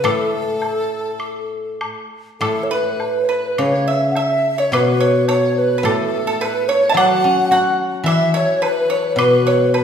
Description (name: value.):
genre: chinese traditional, Chinese chamber ensemble.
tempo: 97-110 BPM.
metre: 4/4.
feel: rubato.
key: A gong mode.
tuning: A4 = 440 Hz.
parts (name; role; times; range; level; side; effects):
xiao; melody; 0.0-9.8 s; A4 to F#5; -20 LUFS; right 2 dB; none.
mellow hollow large dizi; second line; 0.0-9.8 s; A4 to F#5; -22 LUFS; left 2 dB; none.
pipa; second line; 0.0-9.8 s; A4 to A5; -22 LUFS; right 3 dB; none.
guzheng; accompaniment; 0.0-9.8 s; A2 to F#4; -20 LUFS; left 2 dB; none.
woodblock; percussion; 0.0-9.8 s; none; -27 LUFS; left 2 dB; none.
room: wet recital hall reverb, RT60 1.7 s.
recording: heard from further back in the room.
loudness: -15 LUFS.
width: side -8 dB against mid.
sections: 0.0-2.4 A section; 2.4-9.8 B section.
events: none.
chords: none.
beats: | 0.05 0.61 1.20 1.80 | 2.41 3.00 3.58 4.16 | 4.72 5.28 5.84 6.41 | 6.96 7.51 8.07 8.62 | 9.18 9.75.